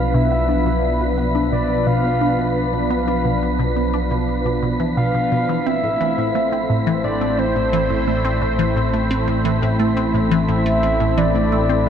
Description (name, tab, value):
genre	ambient, sequencer-driven space music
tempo	87 BPM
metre	4/4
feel	straight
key	A minor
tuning	A4 = 440 Hz
part	soft octave-layered synth lead	melody	0.0-11.9 s	C5 to F5	-23 LUFS	left 1 dB	chorus, cassette tape, ping-pong delay
part	sweeping resonant pad	sustained chords	0.0-11.9 s	F3 to C5	-21 LUFS	equal	chorus
part	fat analog bass	bass	0.0-11.9 s	A1 to B1	-23 LUFS	equal	none
part	wind-like tuned noise texture	texture	0.0-11.9 s	B5	-30 LUFS	equal	built-in reverb
part	resonant blip pluck	riff	0.1-11.9 s	A2 to D4	-22 LUFS	equal	phaser, ping-pong delay
room	wet huge ambient reverb, RT60 8.1 s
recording	none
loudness	-16 LUFS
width	side -8 dB against mid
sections	0.0-11.9 A section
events	none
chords	0.0 Bdim; 5.7 Amadd9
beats	| 0.14 0.83 1.52 2.21 | 2.90 3.59 4.28 4.97 | 5.66 6.35 7.04 7.73 | 8.42 9.11 9.80 10.49 | 11.18 11.87